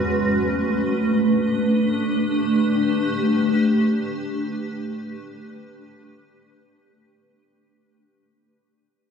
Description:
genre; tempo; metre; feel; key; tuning
ambient; free time; none; none; unclear; A4 = 440 Hz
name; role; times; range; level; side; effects
granular cloud pad; sustained chords; 0.0-7.8 s; A3 to B4; -19 LUFS; equal; built-in reverb, lush chorus
room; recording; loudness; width
wet lush hall reverb, RT60 2.8 s; dreamy mix soaked in reverb, cassette tape; -19 LUFS; side -6 dB against mid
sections
0.0-7.8 A section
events
fade-out 0.0-7.8; filter sweep on ambient pad 0.0-7.8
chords
0.0 G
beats
free time

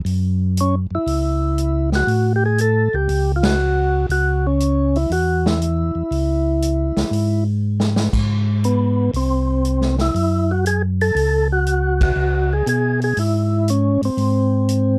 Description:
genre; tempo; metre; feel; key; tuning
soul jazz organ trio; 119 BPM; 4/4; swing 69% on 8ths; C# minor; A4 = 440 Hz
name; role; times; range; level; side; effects
tonewheel organ; bass; 0.1-15.0 s; B#1 to B2; -21 LUFS; equal; slow rotary speaker
vintage drum kit; drums; 0.1-14.8 s; crash cymbal, hi-hat, kick drum, ride cymbal, snare drum; -27 LUFS; equal; none
percussive tonewheel organ; melody; 0.6-15.0 s; B3 to A4; -22 LUFS; equal; slow rotary speaker
room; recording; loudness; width
light reverb; dark, warm production; -19 LUFS; mono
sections
0.0-15.0 A section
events
band accent 3.3, 11.9; drum fill 7.6-8.1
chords
0.1 F#m7; 4.1 C#m; 8.1 G#; 10.1 F#m; 12.2 C#m7; 14.2 G#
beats
| 0.06 0.56 1.07 1.57 | 2.08 2.58 3.09 3.59 | 4.10 4.60 5.11 5.61 | 6.11 6.62 7.12 7.63 | 8.13 8.63 9.14 9.64 | 10.15 10.65 11.16 11.66 | 12.16 12.67 13.17 13.68 | 14.18 14.68

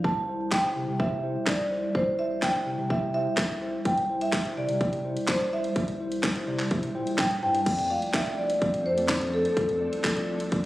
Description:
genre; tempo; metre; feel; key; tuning
dance-pop; 126 BPM; 4/4; straight; F major; A4 = 440 Hz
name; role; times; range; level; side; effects
marimba with soft mallets; melody; 0.0-10.7 s; A4 to A5; -28 LUFS; equal; ping-pong delay
mellow tine electric piano; accompaniment; 0.0-10.7 s; G3 to A5; -32 LUFS; left 1 dB; sidechain pumping
saturated sub bass; bass; 0.0-10.6 s; C2 to C3; -36 LUFS; equal; sidechain pumping
house drum kit; drums; 0.0-10.6 s; crash cymbal, handclaps, hi-hat, kick drum, snare drum; -28 LUFS; equal; none
soft string machine; sustained chords; 8.0-10.7 s; F3 to A4; -35 LUFS; equal; ensemble chorus, sidechain pumping
room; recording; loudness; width
light reverb; recorded on a phone in the room, studio reverb; -24 LUFS; side -16 dB against mid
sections
0.0-7.7 A section; 7.7-10.7 B section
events
tine electric piano fill 6.2-7.7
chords
0.0 C; 7.7 F6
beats
| 0.04 0.52 1.00 1.47 | 1.95 2.42 2.90 3.38 | 3.85 4.33 4.81 5.28 | 5.76 6.23 6.71 7.19 | 7.66 8.14 8.62 9.09 | 9.57 10.04 10.52

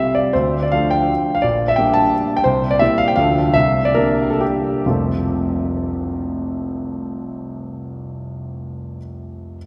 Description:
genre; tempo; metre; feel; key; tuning
classical, romantic triple-time dance for piano with dotted rhythms; 125-183 BPM; 3/4; rubato; F major; A4 = 438 Hz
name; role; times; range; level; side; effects
warm concert grand piano; solo; 0.0-9.6 s; F1 to A5; -19 LUFS; equal; none
room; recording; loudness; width
wet cathedral reverb, RT60 4.9 s; recorded in a church or concert hall; -18 LUFS; mono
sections
0.0-4.9 A section; 4.9-7.5 B section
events
slowing down 2.0-4.9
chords
0.4 Dm; 1.4 Gm/Bb; 2.5 C7; 3.2 Dm; 3.5 Csus2; 4.9 F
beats
| 0.36 0.73 1.10 | 1.44 1.78 2.12 | 2.46 2.81 3.18 | 3.55 3.96 4.42 | 4.87 5.31 5.76 | 6.19 6.63 7.09

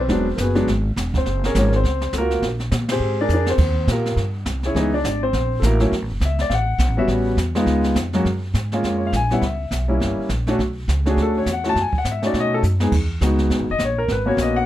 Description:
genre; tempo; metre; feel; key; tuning
jazz piano trio; 206 BPM; 4/4; swing 59% on 8ths; F# major from 8.3 s; A4 = 440 Hz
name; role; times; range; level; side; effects
warm concert grand piano; melody; 0.0-14.7 s; F#2 to A5; -20 LUFS; left 1 dB; none
upright bass; bass; 0.0-14.7 s; E1 to B2; -22 LUFS; equal; none
jazz brush drum kit; drums; 0.1-14.7 s; brushed snare drum, crash cymbal, hi-hat, kick drum, ride cymbal, snare drum; -27 LUFS; right 2 dB; none
room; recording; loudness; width
light reverb; dark, warm production; -18 LUFS; side -13 dB against mid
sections
0.0-8.3 A section; 8.3-14.7 B section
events
band accent 2.9; drum fill 3.3, 12.6; grand piano solo 8.3-14.7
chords
0.1 E9; 1.3 F#maj9; 2.4 Bb13; 3.6 Ebadd9; 4.8 C#m9; 5.3 F#7#9; 5.9 Bsus2; 7.1 A13; 7.7 C#9; 8.3 F#maj9; 9.4 C#m7b5; 10.0 F#7b9; 10.6 Bm9; 11.8 F#madd9; 12.3 B9; 12.9 Emaj9; 14.1 G#m11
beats
| 0.10 0.39 0.68 0.97 | 1.26 1.55 1.84 2.13 | 2.43 2.72 3.01 3.30 | 3.59 3.88 4.17 4.47 | 4.76 5.05 5.34 5.63 | 5.92 6.21 6.51 6.80 | 7.09 7.38 7.67 7.96 | 8.26 8.55 8.84 9.13 | 9.42 9.71 10.01 10.30 | 10.59 10.88 11.17 11.46 | 11.76 12.05 12.34 12.63 | 12.92 13.21 13.51 13.80 | 14.09 14.38

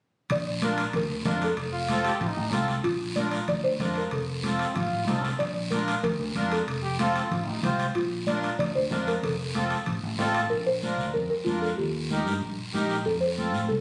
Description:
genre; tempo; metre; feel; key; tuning
latin, cumbia; 188 BPM; 4/4; straight; Bb major; A4 = 439 Hz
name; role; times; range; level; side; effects
buzzing marimba with soft mallets; melody; 0.3-13.8 s; F4 to D5; -32 LUFS; equal; none
fingered electric bass; bass; 0.3-13.8 s; F1 to A2; -34 LUFS; equal; none
congas; percussion; 0.3-13.8 s; none; -34 LUFS; equal; none
guiro; percussion; 0.3-13.8 s; none; -41 LUFS; equal; none
timbales; percussion; 0.3-10.5 s; none; -40 LUFS; equal; none
accordion; accompaniment; 0.6-13.6 s; C4 to C5; -32 LUFS; equal; light tremolo tuning
brilliant trombone; second line; 1.7-7.9 s; C4 to G4; -35 LUFS; equal; none
room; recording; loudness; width
moderate studio reverb, RT60 0.7 s; recorded on a phone in the room, studio reverb, compression; -27 LUFS; mono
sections
0.3-10.5 A section; 10.5-13.8 B section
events
none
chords
0.3 Bb; 1.6 F; 2.9 Bb; 4.1 F; 5.4 Bb; 6.7 F; 8.0 Bb; 9.2 F; 10.5 Bb; 11.8 Eb; 13.1 F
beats
| 0.30 0.62 0.94 1.25 | 1.57 1.89 2.21 2.53 | 2.85 3.17 3.49 3.81 | 4.13 4.45 4.76 5.08 | 5.40 5.72 6.04 6.36 | 6.68 7.00 7.32 7.63 | 7.95 8.27 8.59 8.91 | 9.23 9.55 9.87 10.19 | 10.51 10.83 11.15 11.47 | 11.79 12.11 12.43 12.74 | 13.06 13.38 13.70

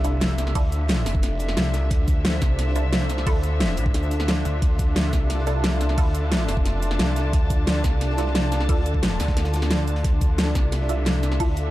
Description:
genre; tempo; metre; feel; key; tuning
dark technical drum and bass; 177 BPM; 4/4; straight; D minor; A4 = 441 Hz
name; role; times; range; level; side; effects
dark analog pad; sustained chords; 0.0-11.7 s; D4 to E5; -32 LUFS; right 1 dB; chorus, sidechain pumping
filtered dub chord stab; stabs; 0.0-0.7, 2.8-3.4, 5.5-6.1, 8.2-8.8, 10.9-11.5 s; D4 to A4; -32 LUFS; right 2 dB; phaser, analog chorus, vintage 12-bit sampler grit, digital delay
snarling distorted saw bass; bass; 0.0-11.7 s; F1 to D2; -23 LUFS; equal; distortion, overdrive
crunchy breakbeat drum kit; drums; 0.0-11.6 s; hi-hat, snare drum; -40 LUFS; equal; none
dubstep drum kit; drums; 0.0-11.6 s; hi-hat, shaker, snare drum; -26 LUFS; equal; overdrive
sub drop; sound effects; 0.0-0.6 s; none; barely audible; none; none
muted studio string section; texture; 0.0-11.7 s; D4 to A5; -31 LUFS; left 2 dB; sidechain pumping
electronic kick drum; drums; 0.6-11.5 s; none; -22 LUFS; equal; overdrive
metallic wobble bass; bass; 3.9-4.4 s; D2; -23 LUFS; equal; distortion, chorus
room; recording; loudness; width
little or no reverb; dark, warm production; -20 LUFS; side -16 dB against mid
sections
0.0-11.7 A section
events
impact 0.0-0.6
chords
0.0 Dmadd9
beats
0.21 | 0.55 0.89 1.23 1.57 | 1.91 2.25 2.59 2.93 | 3.27 3.60 3.94 4.28 | 4.62 4.96 5.30 5.64 | 5.98 6.32 6.66 6.99 | 7.33 7.67 8.01 8.35 | 8.69 9.03 9.37 9.71 | 10.04 10.38 10.72 11.06 | 11.40

